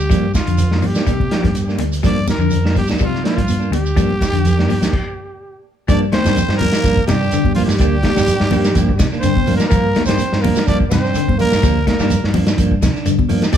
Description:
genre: afrobeat.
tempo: 125 BPM.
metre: 4/4.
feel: swing 54% on 16ths.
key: G minor.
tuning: A4 = 440 Hz.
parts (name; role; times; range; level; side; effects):
growling trumpet; melody; 0.0-13.6 s; F4 to D5; -23 LUFS; equal; none.
semi-hollow electric guitar; arpeggios; 0.0-13.6 s; C3 to A3; -23 LUFS; left 6 dB; none.
deep dub fingered electric bass; bass; 0.0-13.6 s; D2 to C3; -19 LUFS; equal; none.
shekere; percussion; 0.0-13.6 s; none; -27 LUFS; right 6 dB; none.
clean electric guitar; stabs; 0.1-13.6 s; F3 to D4; -23 LUFS; right 4 dB; spring reverb.
vintage drum kit; drums; 0.1-13.6 s; crash cymbal, hi-hat, kick drum, snare drum; -19 LUFS; equal; none.
congas; percussion; 0.1-13.4 s; none; -23 LUFS; left 1 dB; none.
trombone with bucket mute; second line; 5.9-12.3 s; F3 to D4; -23 LUFS; right 4 dB; none.
room: light reverb.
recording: band playing live in one room.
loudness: -13 LUFS.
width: side -9 dB against mid.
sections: 0.0-5.9 A section; 5.9-13.6 B section.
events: stop 4.9-5.9.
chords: 0.0 Gm7.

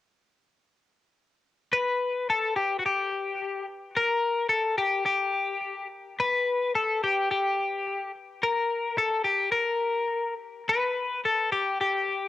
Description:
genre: rock.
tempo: 107 BPM.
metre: 4/4.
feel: straight.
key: unclear.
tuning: A4 = 441 Hz.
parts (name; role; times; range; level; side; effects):
twelve-string electric guitar; melody; 1.7-12.3 s; F#4 to B4; -24 LUFS; left 3 dB; cassette tape.
room: moderate spring reverb, RT60 1.2 s, digital ambience.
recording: home recording on cassette.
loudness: -24 LUFS.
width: side -14 dB against mid.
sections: 1.7-12.3 A section.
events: none.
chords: none.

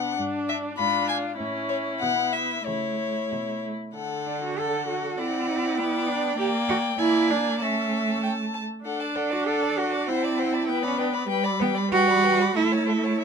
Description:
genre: quick classical-period movement for string quartet.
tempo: 92-101 BPM.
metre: 2/4.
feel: rubato.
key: D major.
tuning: A4 = 440 Hz.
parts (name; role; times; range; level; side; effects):
rich violin; melody; 0.0-13.2 s; C#5 to B5; -29 LUFS; left 6 dB; none.
rich violin; second line; 0.0-13.2 s; D4 to A5; -31 LUFS; left 3 dB; none.
warm viola; accompaniment; 0.0-13.2 s; D3 to D4; -28 LUFS; right 2 dB; none.
rich cello; bass; 0.0-13.2 s; G2 to A4; -26 LUFS; right 4 dB; none.
room: light reverb.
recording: close, detailed microphones.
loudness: -22 LUFS.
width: side -6 dB against mid.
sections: 0.0-4.0 A section; 4.0-13.2 B section.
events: none.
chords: 0.2 Em7/G (rootless); 0.8 G#dim7; 1.4 A; 4.0 D; 5.2 D7/C; 5.8 G/B; 6.4 Gm/Bb; 7.0 Bb7; 7.6 A; 8.8 D; 10.1 D7/C; 10.7 G/B; 11.3 G; 12.6 A.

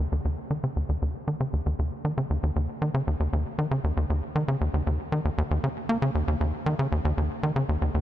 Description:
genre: ambient.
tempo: 117 BPM.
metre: 4/4.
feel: straight.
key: unclear.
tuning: A4 = 437 Hz.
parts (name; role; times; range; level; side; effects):
tight sequencer bass; solo; 0.0-8.0 s; Eb2 to Bb3; -25 LUFS; equal; analog delay.
room: moderate huge ambient reverb, RT60 8.1 s.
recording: none.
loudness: -25 LUFS.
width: side -13 dB against mid.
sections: 0.0-8.0 A section.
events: none.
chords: none.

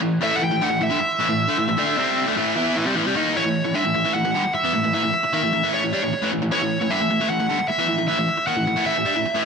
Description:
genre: rock.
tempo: 152 BPM.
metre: 4/4.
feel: straight.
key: A mixolydian.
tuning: A4 = 440 Hz.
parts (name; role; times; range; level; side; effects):
biting overdriven guitar; riff; 0.0-9.4 s; G2 to E4; -21 LUFS; equal; spring reverb.
smooth overdriven lead guitar; melody; 0.2-9.4 s; C#5 to G5; -22 LUFS; equal; analog delay.
room: moderate studio reverb, RT60 0.7 s.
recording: none.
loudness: -19 LUFS.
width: side -5 dB against mid.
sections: 0.0-3.4 A section; 3.4-9.4 B section.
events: none.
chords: 0.0 A5; 3.4 A.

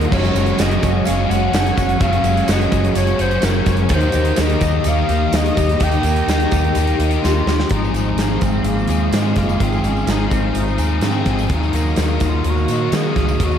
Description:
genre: rock, shoegaze and dream pop.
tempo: 126 BPM.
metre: 4/4.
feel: straight.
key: unclear.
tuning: A4 = 437 Hz.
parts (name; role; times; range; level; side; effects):
mellow clarinet; melody; 0.0-13.6 s; Ab3 to G5; -23 LUFS; equal; diffuse ambient delay.
soft string machine; sustained chords; 0.0-13.6 s; Gb3 to Eb6; -28 LUFS; right 1 dB; ensemble chorus.
electric guitar through a small old amp; arpeggios; 0.0-13.6 s; Eb3 to G4; -27 LUFS; right 1 dB; lush chorus, diffuse ambient delay.
crunchy overdriven guitar; riff; 0.0-13.6 s; Ab2 to Ab4; -23 LUFS; left 8 dB; ensemble chorus.
overdriven semi-hollow guitar; riff; 0.0-13.6 s; Ab2 to Ab4; -26 LUFS; right 9 dB; reverse reverb.
overdriven semi-hollow guitar; riff; 0.0-7.7 s; Gb2 to Eb4; -25 LUFS; right 1 dB; spring reverb.
vintage muted fingered electric bass; bass; 0.0-13.6 s; Gb1 to Eb3; -20 LUFS; equal; none.
big rock drum kit; drums; 0.0-13.5 s; crash cymbal, hi-hat, kick drum, snare drum; -22 LUFS; equal; none.
tambourine; percussion; 0.4-13.6 s; none; -39 LUFS; right 13 dB; none.
room: moderate lush hall reverb, RT60 1.9 s, small room ambience.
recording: dreamy mix soaked in reverb.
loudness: -15 LUFS.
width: side -8 dB against mid.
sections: 0.0-7.7 A section; 7.7-13.6 B section.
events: drum fill 7.2-7.7.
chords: 0.1 Gbsus2; 3.9 Eb; 7.7 Ab6; 11.5 Ebmadd9.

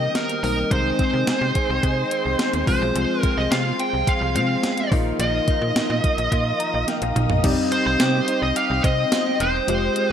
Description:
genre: 1980s-style pop.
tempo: 107 BPM.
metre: 4/4.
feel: straight.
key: C minor.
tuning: A4 = 439 Hz.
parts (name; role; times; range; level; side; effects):
high-gain lead guitar; melody; 0.0-10.1 s; Bb4 to G5; -23 LUFS; right 1 dB; distortion, shimmer reverb, ping-pong delay.
barky tine electric piano; accompaniment; 0.0-10.1 s; G3 to Bb5; -27 LUFS; left 4 dB; overdrive, shimmer reverb.
ethereal airy pad; sustained chords; 0.0-10.1 s; Ab3 to Eb6; -31 LUFS; left 1 dB; ensemble chorus, built-in reverb, shimmer reverb.
direct-recorded clean electric guitar; riff; 0.0-10.1 s; Eb3 to Ab4; -30 LUFS; right 4 dB; ensemble chorus, shimmer reverb.
mellow synth brass; stabs; 0.0-7.4 s; Eb3 to Bb4; -32 LUFS; left 3 dB; chorus, shimmer reverb.
slap-like FM bass; bass; 0.0-9.9 s; E1 to C3; -25 LUFS; equal; none.
clean 12-bit digital drum machine; drums; 0.2-10.1 s; crash cymbal, hi-hat, kick drum, snare drum, tambourine, toms; -23 LUFS; equal; overdrive, gated reverb.
room: moderate plate reverb, RT60 1.4 s, digital ambience.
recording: bright 1980s-style digital production.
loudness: -18 LUFS.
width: side -8 dB against mid.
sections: 0.0-7.4 A section; 7.4-10.1 B section.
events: tine electric piano fill 6.3-7.4; drum fill 6.9-7.4.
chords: 0.0 Eb/C; 0.7 Ab/C; 2.7 Fm; 4.9 Bbsus4; 7.4 Cm.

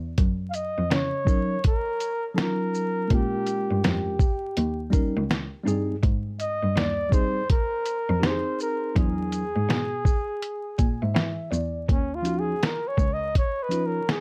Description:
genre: hip hop, jazz-hop.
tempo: 82 BPM.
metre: 4/4.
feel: swing 64% on 16ths.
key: unclear.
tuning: A4 = 439 Hz.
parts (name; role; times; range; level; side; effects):
clear cello; bass; 0.0-13.3 s; Db2 to E3; -30 LUFS; equal; none.
lo-fi sampler-style drum kit; drums; 0.2-14.2 s; hi-hat, kick drum, shaker, snare drum; -26 LUFS; equal; none.
breathy flugelhorn; melody; 0.5-14.2 s; Db4 to F5; -31 LUFS; equal; plate reverb, tape echo.
mellow tine electric piano; accompaniment; 1.2-14.0 s; F3 to G#5; -31 LUFS; equal; none.
room: light reverb.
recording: dark, warm production, vinyl crackle.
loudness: -25 LUFS.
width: mono.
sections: 0.0-11.9 A section; 11.9-14.2 B section.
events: tine electric piano fill 10.4-11.9; flugelhorn solo 11.9-14.2.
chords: 0.2 Gb6; 3.1 Bbm7; 4.6 Eb7; 6.0 Abmaj7; 9.0 E9; 11.9 Ebm9.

